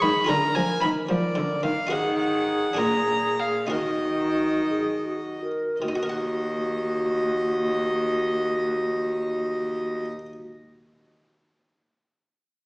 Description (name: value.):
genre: classical, baroque-style sonata movement with continuo.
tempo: 52-75 BPM (dotted quarters).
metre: 6/8.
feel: rubato.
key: Eb minor.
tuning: A4 = 439 Hz.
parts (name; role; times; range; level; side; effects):
rich violin; melody; 0.0-10.1 s; D5 to Cb6; -28 LUFS; equal; none.
mellow baroque flute; second line; 0.0-10.0 s; Gb4 to Bb4; -27 LUFS; equal; none.
buff-stop harpsichord; accompaniment; 0.0-10.3 s; Bb2 to Gb5; -32 LUFS; equal; none.
dark cello; bass; 0.0-10.0 s; Eb2 to F3; -28 LUFS; equal; none.
room: wet recital hall reverb, RT60 1.6 s.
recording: recorded in a church or concert hall, small speaker sound.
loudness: -22 LUFS.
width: side -37 dB against mid.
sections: 0.0-5.8 A section; 5.8-10.4 B section.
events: slowing down 1.1-5.8.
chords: 0.3 Bb7/D; 1.9 Ebm; 2.8 Bb7; 3.7 Ebm.